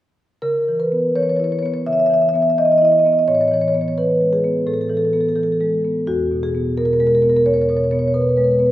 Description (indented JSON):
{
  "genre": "classical, contemporary piece for solo marimba",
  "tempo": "86 BPM",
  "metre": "4/4",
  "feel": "rubato",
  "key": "C# minor",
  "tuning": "A4 = 440 Hz",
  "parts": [
    { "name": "marimba with medium mallets", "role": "solo", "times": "0.4-8.7 s", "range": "E2 to E5", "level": "-15 LUFS", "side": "equal", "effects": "none" }
  ],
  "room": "wet recital hall reverb, RT60 1.6 s",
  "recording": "recorded in a church or concert hall",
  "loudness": "-15 LUFS",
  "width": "side -14 dB against mid",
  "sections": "0.4-8.7 A section",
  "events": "none",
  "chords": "0.4 C#m9; 3.3 Amaj9; 6.1 E",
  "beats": "| 0.42 1.15 1.86 2.57 | 3.27 3.96 4.66 5.37 | 6.07 6.78 7.47 8.15"
}